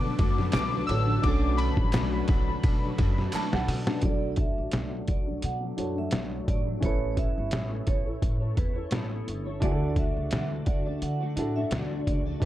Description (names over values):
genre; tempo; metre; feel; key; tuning
indie pop, bedroom pop; 86 BPM; 4/4; swing 55% on 16ths; B minor; A4 = 440 Hz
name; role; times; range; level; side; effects
warbly lo-fi synth keys; melody; 0.0-3.6 s; B5 to E6; -33 LUFS; left 4 dB; wide subtle chorus
picked steel-string acoustic guitar; accompaniment; 0.0-12.5 s; B2 to D5; -34 LUFS; left 2 dB; ensemble chorus, vibrato effect, low-pass filter
warm upright piano; accompaniment; 0.0-12.5 s; C#4 to A5; -35 LUFS; right 3 dB; low-pass filter
lush unison pad; sustained chords; 0.0-4.0 s; D3 to A5; -38 LUFS; left 1 dB; chorus, phaser
upright bass; bass; 0.0-12.5 s; G1 to D3; -31 LUFS; equal; none
trip hop sampler-style drum kit; drums; 0.2-12.5 s; hi-hat, kick drum, ride cymbal, snare drum; -28 LUFS; equal; none
group handclap; percussion; 0.6-3.5 s; none; -44 LUFS; right 3 dB; none
vibraphone with medium hard mallets; second line; 4.0-12.5 s; B4 to F#5; -37 LUFS; right 5 dB; wide subtle chorus, tape echo
room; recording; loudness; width
light reverb; dark, warm production; -25 LUFS; side -14 dB against mid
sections
0.0-4.0 A section; 4.0-12.5 B section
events
upright piano fill 3.0-4.0; drum fill 3.3-4.0; filter sweep 4.0-12.5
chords
0.0 Bm7; 6.8 Aadd9; 9.6 Dadd9